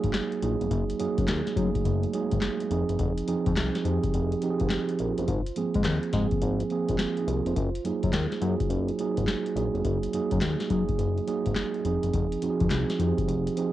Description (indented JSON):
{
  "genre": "R&B, new jack swing",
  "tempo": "105 BPM",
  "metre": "4/4",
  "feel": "swing 64% on 16ths",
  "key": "unclear",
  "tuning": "A4 = 439 Hz",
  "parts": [
    { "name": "mellow tine electric piano", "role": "accompaniment", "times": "0.0-13.7 s", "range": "F3 to C5", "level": "-28 LUFS", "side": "right 4 dB", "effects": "slow stereo tremolo, cassette tape" },
    { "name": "fat analog bass", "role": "bass", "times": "0.0-13.5 s", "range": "F1 to Ab2", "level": "-28 LUFS", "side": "left 2 dB", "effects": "none" },
    { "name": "booming analog drum machine", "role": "drums", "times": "0.0-13.7 s", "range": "handclaps, hi-hat, kick drum, snare drum", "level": "-30 LUFS", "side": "left 2 dB", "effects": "cassette tape" }
  ],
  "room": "moderate small room reverb, RT60 0.5 s",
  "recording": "home recording on cassette, nothing above 10.5 kHz",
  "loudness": "-24 LUFS",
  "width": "side -14 dB against mid",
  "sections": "0.0-13.7 A section",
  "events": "none",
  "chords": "0.0 Gb69; 2.7 Fm7; 5.3 Ab69; 7.6 Gb69; 11.9 Fm7"
}